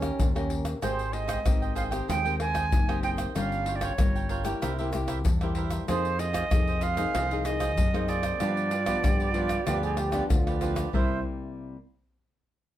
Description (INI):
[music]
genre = samba and choro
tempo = 95 BPM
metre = 4/4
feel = straight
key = C minor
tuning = A4 = 440 Hz
[part]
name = mellow trombone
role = second line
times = 0.0-0.6, 8.7-11.2 s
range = Db4 to Ab4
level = -32 LUFS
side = right 3 dB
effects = none
[part]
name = nylon-string guitar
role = accompaniment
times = 0.0-11.8 s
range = G2 to Bb4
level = -34 LUFS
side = left 4 dB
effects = none
[part]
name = fingered electric bass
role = bass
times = 0.0-11.2 s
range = F#1 to G2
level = -31 LUFS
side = equal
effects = none
[part]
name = egg shaker, surdo, pandeiro and tamborim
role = percussion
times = 0.0-11.1 s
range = none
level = -28 LUFS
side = left 1 dB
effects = none
[part]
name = silver concert flute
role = melody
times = 0.8-11.2 s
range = C5 to Ab5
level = -31 LUFS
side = right 4 dB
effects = none
[part]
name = cavaquinho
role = accompaniment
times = 0.8-11.2 s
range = E4 to G5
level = -35 LUFS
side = right 6 dB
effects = none
[sound]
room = light reverb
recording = none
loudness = -25 LUFS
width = side -12 dB against mid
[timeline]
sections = 0.0-10.9 A section; 10.9-12.8 B section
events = none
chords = 0.0 Eb7; 0.8 Abmaj9; 3.4 Gm7b5; 4.6 C7; 5.9 Fm7; 8.4 G7; 10.9 C7